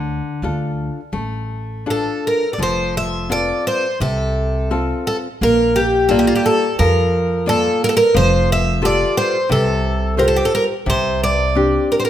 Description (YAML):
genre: fado-style ballad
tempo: 87 BPM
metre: 4/4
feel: rubato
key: F major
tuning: A4 = 440 Hz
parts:
  - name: nylon-string guitar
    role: accompaniment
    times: 0.0-12.1 s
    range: C3 to D5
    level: -21 LUFS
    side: left 1 dB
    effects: none
  - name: upright bass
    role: bass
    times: 0.0-11.8 s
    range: F1 to F2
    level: -21 LUFS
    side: right 1 dB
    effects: none
  - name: picked twelve-string acoustic guitar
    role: melody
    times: 1.9-12.1 s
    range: F4 to E5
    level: -17 LUFS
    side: equal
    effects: none
room: light reverb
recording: minimal, uncompressed stereo recording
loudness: -15 LUFS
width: side -11 dB against mid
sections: 0.0-2.6 A section; 2.6-12.1 B section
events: none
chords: 0.0 Dm; 2.6 F; 5.4 Bb; 8.1 Fadd9; 10.9 Csus2